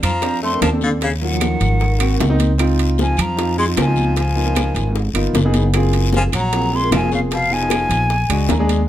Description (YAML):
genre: Afro-Cuban jazz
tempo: 152 BPM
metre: 4/4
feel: straight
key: unclear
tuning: A4 = 440 Hz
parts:
  - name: hollow concert flute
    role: melody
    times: 0.0-8.7 s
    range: F5 to C6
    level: -22 LUFS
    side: equal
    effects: none
  - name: bright baritone saxophone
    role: second line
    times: 0.0-8.1 s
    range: Cb3 to A3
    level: -25 LUFS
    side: left 4 dB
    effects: none
  - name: upright bass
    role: bass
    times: 0.0-8.9 s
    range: F1 to F2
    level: -18 LUFS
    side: equal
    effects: none
  - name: claves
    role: percussion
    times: 0.0-8.5 s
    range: none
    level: -30 LUFS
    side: right 8 dB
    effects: none
  - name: congas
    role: percussion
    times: 0.0-8.9 s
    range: none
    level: -25 LUFS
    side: left 1 dB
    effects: none
  - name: guiro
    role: percussion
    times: 0.0-8.9 s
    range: none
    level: -32 LUFS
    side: left 6 dB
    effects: none
  - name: timbales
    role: percussion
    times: 0.0-8.9 s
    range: none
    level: -26 LUFS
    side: right 7 dB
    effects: none
  - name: warm concert grand piano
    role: accompaniment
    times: 0.2-8.9 s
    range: F3 to Bb5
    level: -22 LUFS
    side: right 1 dB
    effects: none
  - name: bongos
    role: percussion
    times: 0.2-8.9 s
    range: none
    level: -26 LUFS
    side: left 5 dB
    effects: none
room: light reverb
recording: close, detailed microphones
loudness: -15 LUFS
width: side -12 dB against mid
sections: 0.0-8.9 A section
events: grand piano fill 8.3-8.9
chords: 0.0 Bbmaj9; 1.0 Ebm7; 1.8 Ab9; 2.6 Dbmaj9; 4.2 Db13; 5.7 Gbmaj9#11; 7.3 Fm7b5; 8.1 Bb7alt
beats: 0.23 0.63 | 1.02 1.41 1.81 2.20 | 2.59 2.99 3.38 3.77 | 4.17 4.56 4.96 5.35 | 5.74 6.13 6.53 6.92 | 7.31 7.71 8.10 8.49